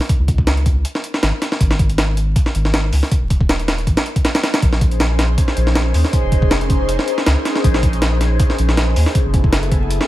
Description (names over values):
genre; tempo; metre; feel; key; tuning
drum and bass, jungle; 159 BPM; 4/4; swing 54% on 16ths; unclear; A4 = 440 Hz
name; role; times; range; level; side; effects
breakbeat sampler-style drum kit; drums; 0.0-10.1 s; hi-hat, kick drum, snare drum; -16 LUFS; equal; none
soft dub sub bass; bass; 0.2-10.0 s; Eb1 to Eb2; -17 LUFS; equal; none
airy breathy pad; sustained chords; 4.6-10.1 s; Cb4 to C5; -22 LUFS; equal; chorus, phaser
room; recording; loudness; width
digital ambience; vinyl crackle; -14 LUFS; side -15 dB against mid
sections
0.0-10.1 A section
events
none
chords
0.0 N.C.; 0.8 Ab5; 4.6 Bbm11; 9.2 Gbm11